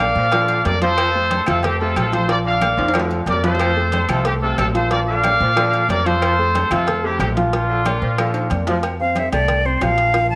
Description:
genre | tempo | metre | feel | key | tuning
latin, salsa | 183 BPM | 4/4 | straight | F major | A4 = 436 Hz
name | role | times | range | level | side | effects
bright trumpet section | melody | 0.0-8.6 s | C4 to F5 | -22 LUFS | equal | slapback echo
dark grand piano | accompaniment | 0.0-10.4 s | F3 to C6 | -25 LUFS | equal | none
upright bass | bass | 0.0-10.4 s | Bb1 to Bb2 | -25 LUFS | equal | none
warm saxophone section | second line | 0.2-8.8 s | C3 to F3 | -30 LUFS | equal | slapback echo
congas | percussion | 0.2-10.4 s | none | -32 LUFS | equal | none
agogo bells and timbales | percussion | 0.3-10.3 s | none | -29 LUFS | equal | none
claves | percussion | 0.3-8.3 s | none | -36 LUFS | equal | none
cowbell | percussion | 0.3-10.3 s | none | -32 LUFS | equal | none
bright silver concert flute | melody | 9.0-10.4 s | C5 to A5 | -20 LUFS | equal | slapback echo
room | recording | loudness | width
light reverb, studio reverb | none | -18 LUFS | mono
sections
0.0-8.8 A section; 8.8-10.4 B section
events
drum fill 2.8-3.6, 8.3-8.8; flute solo 8.8-10.4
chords
0.0 Bb; 1.0 F; 2.3 Bb; 3.6 F; 4.9 Bb; 6.2 F; 7.5 Bb; 8.8 F

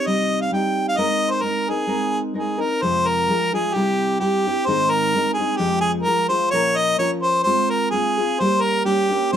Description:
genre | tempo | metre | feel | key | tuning
mexican folk, mariachi | 130 BPM | 2/4 | swing 53% on 8ths | F minor | A4 = 440 Hz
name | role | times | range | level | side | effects
clear harmonica | melody | 0.0-9.4 s | G4 to G5 | -20 LUFS | equal | none
nylon-string guitar | accompaniment | 0.0-9.4 s | F2 to Bb4 | -22 LUFS | equal | none
room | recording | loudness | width
moderate studio reverb, RT60 0.6 s | dark, warm production | -18 LUFS | side -9 dB against mid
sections
0.0-2.8 A section; 2.8-9.4 B section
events
none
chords
0.0 Cm; 1.0 Abadd9; 2.8 Fm; 3.8 C; 4.7 Ab; 5.6 Fm; 6.5 Bbm; 7.5 Fm/Ab; 8.4 Gdim

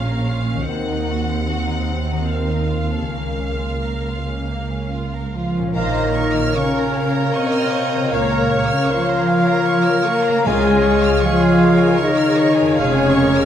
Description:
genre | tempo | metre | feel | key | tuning
classical, slow romantic movement for symphony orchestra | 66-79 BPM | 3/4 | rubato | Bb minor | A4 = 439 Hz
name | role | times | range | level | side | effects
warm symphonic violin section | melody | 0.0-13.5 s | F4 to Gb5 | -28 LUFS | left 1 dB | none
warm symphonic violin section | second line | 0.0-13.5 s | Bb3 to F6 | -29 LUFS | right 1 dB | none
dark studio viola section | accompaniment | 0.0-13.5 s | Bb3 to Db5 | -27 LUFS | equal | none
concert harp | arpeggios | 0.0-13.5 s | F2 to C5 | -28 LUFS | left 7 dB | none
dark symphonic cello section | bass | 0.0-13.5 s | Db2 to Bb3 | -23 LUFS | right 3 dB | none
warm symphonic double bass section | bass | 0.0-13.5 s | F1 to Eb2 | -24 LUFS | right 3 dB | none
mellow French horn section | sustained chords | 5.3-13.5 s | Bb3 to Bb4 | -19 LUFS | left 4 dB | none
small flute group | second line | 5.4-13.5 s | Bb4 to Bb5 | -27 LUFS | left 2 dB | none
dark cor anglais | second line | 5.8-13.5 s | F5 | -25 LUFS | right 3 dB | none
mellow clarinet | second line | 5.8-13.5 s | Bb4 to Db5 | -28 LUFS | left 1 dB | none
clear bassoon | accompaniment | 5.8-13.5 s | Ab3 to Bb3 | -25 LUFS | right 2 dB | none
timpani | percussion | 10.5-11.6 s | Db3 | -28 LUFS | equal | none
room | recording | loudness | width
moderate recital hall reverb, RT60 1.4 s | none | -16 LUFS | side -9 dB against mid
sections
0.0-5.8 A section; 5.8-13.5 A section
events
none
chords
0.0 Bbm; 0.7 Cdim/Eb; 2.3 F7/Eb; 3.2 Bbm/Db; 5.8 Bbm; 8.1 Bbm/Db; 10.5 Db; 12.8 Db/F

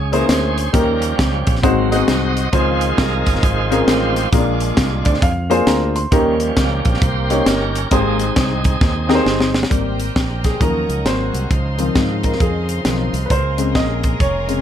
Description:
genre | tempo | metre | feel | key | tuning
uptempo gospel | 134 BPM | 4/4 | swing 63% on 8ths | Ab major | A4 = 440 Hz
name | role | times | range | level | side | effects
bright tonewheel organ | sustained chords | 0.0-14.6 s | Db3 to Eb5 | -23 LUFS | right 3 dB | fast rotary speaker, overdrive
modern bright fingered electric bass | bass | 0.0-14.6 s | F1 to Ab2 | -21 LUFS | right 1 dB | none
clear grand piano | accompaniment | 0.1-14.6 s | Ab2 to C6 | -19 LUFS | left 2 dB | none
tight funk drum kit | drums | 0.1-14.6 s | hi-hat, kick drum, snare drum | -18 LUFS | equal | none
clear studio string section | sustained chords | 9.7-14.6 s | Bb4 to C6 | -31 LUFS | left 2 dB | none
room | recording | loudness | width
light reverb | none | -14 LUFS | side -9 dB against mid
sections
0.0-9.7 A section; 9.7-14.6 B section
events
tonewheel organ solo 0.0-9.7; grand piano fill 4.8-6.1; drum fill 8.8-9.7; grand piano solo 9.7-14.6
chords
0.0 Dbm6; 0.7 Eb7; 1.6 Ab7; 2.5 Dbmaj7; 4.3 Bb7; 6.1 Eb7; 7.9 Abmaj7; 9.7 Abmaj9; 10.6 Ebm7; 11.1 Ab9; 11.5 Dbmaj9; 13.3 Bbm9

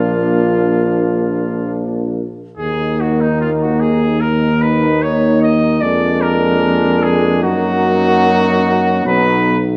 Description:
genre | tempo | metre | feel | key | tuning
classical, brass quintet | 74 BPM | 4/4 | straight | Eb minor | A4 = 440 Hz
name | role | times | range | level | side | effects
clear trumpet | melody | 0.0-9.6 s | Eb4 to Eb5 | -20 LUFS | equal | none
mellow flugelhorn | second line | 0.0-9.6 s | D4 to D#4 | -26 LUFS | equal | none
bright trombone | accompaniment | 0.0-9.6 s | Eb3 to Ab3 | -25 LUFS | equal | none
mellow French horn | accompaniment | 0.0-9.6 s | Bb3 to B3 | -22 LUFS | equal | none
warm tuba | bass | 0.0-9.8 s | Bb1 to Gb2 | -19 LUFS | equal | none
room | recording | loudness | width
wet recital hall reverb, RT60 1.6 s | dark, warm production, nothing above 10.4 kHz | -15 LUFS | mono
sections
0.0-9.8 A section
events
none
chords
0.0 Bb; 2.6 Eb5; 5.8 Bb7/F; 7.4 Ebm/Gb; 9.1 B

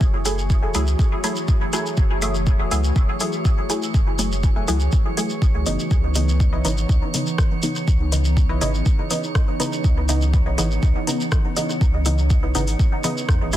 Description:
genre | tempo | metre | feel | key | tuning
dub techno | 122 BPM | 4/4 | straight | F# minor | A4 = 440 Hz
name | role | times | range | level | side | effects
warbly tape-like pad | sustained chords | 0.0-13.6 s | C#3 to G#4 | -29 LUFS | right 1 dB | chorus, built-in reverb, sidechain pumping
filtered dub chord stab | stabs | 0.0-13.6 s | C#3 to G#4 | -26 LUFS | equal | chorus, phaser, cassette tape, sidechain pumping, dub echo
warm sub bass | bass | 0.0-13.6 s | E1 to E2 | -22 LUFS | equal | sidechain pumping
electronic kick drum | drums | 0.0-13.4 s | none | -18 LUFS | equal | none
shekere | percussion | 0.0-13.6 s | none | -30 LUFS | equal | none
drifting glass-harmonics texture | texture | 0.0-13.6 s | C#5 | -34 LUFS | right 4 dB | chorus, built-in reverb, sidechain pumping
soft vintage rhythm box | drums | 0.3-13.6 s | hi-hat, rim click | -29 LUFS | left 2 dB | dub echo
filtered dub chord stab | riff | 0.6-12.6 s | E4 to G#5 | -35 LUFS | left 2 dB | chorus, sidechain pumping, dub echo
room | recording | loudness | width
little or no reverb | dense, heavily limited modern master | -18 LUFS | side -13 dB against mid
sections
0.0-13.6 A section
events
filter sweep on synth stab 0.0-13.6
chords
0.0 F#m9; 5.9 C#m9

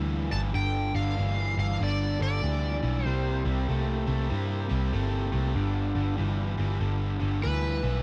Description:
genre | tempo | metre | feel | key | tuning
rock | 96 BPM | 4/4 | swing 63% on 8ths | G mixolydian | A4 = 440 Hz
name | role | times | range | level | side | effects
overdriven tonewheel organ | sustained chords | 0.0-8.0 s | G3 to G4 | -41 LUFS | equal | lush chorus
cranked stack guitar | riff | 0.0-8.0 s | G2 to A3 | -34 LUFS | equal | overdrive
vintage muted picked electric bass | bass | 0.0-8.0 s | G1 to G2 | -30 LUFS | equal | none
overdriven slide guitar | melody | 0.3-3.4, 7.4-8.0 s | B4 to A5 | -36 LUFS | equal | none
room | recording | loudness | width
studio reverb | dry, close 1970s-style studio recording | -28 LUFS | mono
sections
0.0-8.0 A section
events
none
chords
0.0 G7; 3.1 C7; 5.6 G7

